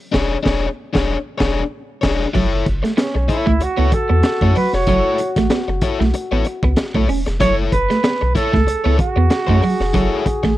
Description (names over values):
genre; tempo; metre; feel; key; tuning
funk; 95 BPM; 4/4; swing 56% on 16ths; F# minor; A4 = 441 Hz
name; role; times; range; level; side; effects
crunchy overdriven guitar; accompaniment; 0.1-10.5 s; D4 to C#5; -23 LUFS; left 6 dB; none
round analog bass; bass; 0.1-10.6 s; E1 to F#2; -18 LUFS; equal; none
crunchy breakbeat drum kit; drums; 0.1-10.6 s; crash cymbal, hi-hat, kick drum, snare drum; -21 LUFS; equal; none
electric guitar at the edge of break-up; riff; 2.3-10.5 s; F#3 to C#4; -22 LUFS; right 4 dB; analog chorus
dark trumpet; melody; 3.0-10.5 s; C#4 to C#5; -20 LUFS; right 3 dB; none
mellow trombone; second line; 3.6-10.6 s; F#4 to G#4; -25 LUFS; left 4 dB; none
room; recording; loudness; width
little or no reverb; dry, close 1970s-style studio recording; -15 LUFS; side -15 dB against mid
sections
0.0-2.3 A section; 2.3-10.6 B section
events
band accent 0.0-2.3; trumpet solo 2.3-10.6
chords
0.0 E13; 2.3 F#m7